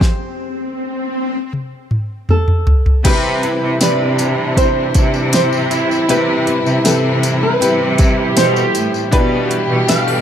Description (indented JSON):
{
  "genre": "pop ballad",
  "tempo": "79 BPM",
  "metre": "4/4",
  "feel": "straight",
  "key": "C major",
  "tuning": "A4 = 440 Hz",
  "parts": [
    { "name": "flamenco guitar", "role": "melody", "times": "0.0-10.2 s", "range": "A4 to F5", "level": "-20 LUFS", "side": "right 1 dB", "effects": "ping-pong delay" },
    { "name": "clear upright piano", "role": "accompaniment", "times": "0.0-10.2 s", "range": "B2 to C5", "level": "-21 LUFS", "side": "left 3 dB", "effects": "none" },
    { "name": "picked steel-string acoustic guitar", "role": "arpeggios", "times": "0.0-10.2 s", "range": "B2 to C5", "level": "-28 LUFS", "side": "right 1 dB", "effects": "none" },
    { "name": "smooth R&B drum kit", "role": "drums", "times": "0.0-10.1 s", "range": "crash cymbal, hi-hat, kick drum, snare drum, toms", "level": "-14 LUFS", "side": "equal", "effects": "overdrive" },
    { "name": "swell", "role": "sound effects", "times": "0.0-1.5 s", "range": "none", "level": "-23 LUFS", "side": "left 2 dB", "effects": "none" },
    { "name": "warm studio string section", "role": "sustained chords", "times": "3.0-10.2 s", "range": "E3 to G4", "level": "-24 LUFS", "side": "left 2 dB", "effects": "none" },
    { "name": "clear symphonic cello section", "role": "bass", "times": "3.0-10.2 s", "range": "A2 to C3", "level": "-18 LUFS", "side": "equal", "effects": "none" },
    { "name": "tambourine", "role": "percussion", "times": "3.0-10.1 s", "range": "none", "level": "-27 LUFS", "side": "left 8 dB", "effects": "none" },
    { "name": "mellow French horn section", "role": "second line", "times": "3.1-10.2 s", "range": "D4 to G4", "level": "-22 LUFS", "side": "right 4 dB", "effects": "none" }
  ],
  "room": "small room ambience",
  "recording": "none",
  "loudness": "-13 LUFS",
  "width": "side -9 dB against mid",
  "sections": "0.0-3.1 A section; 3.1-10.2 B section",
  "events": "swell 0.0-3.1; stop 0.0-3.1; drum fill 1.5-3.1",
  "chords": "0.0 N.C.; 3.1 Cmaj7; 9.1 G6/B"
}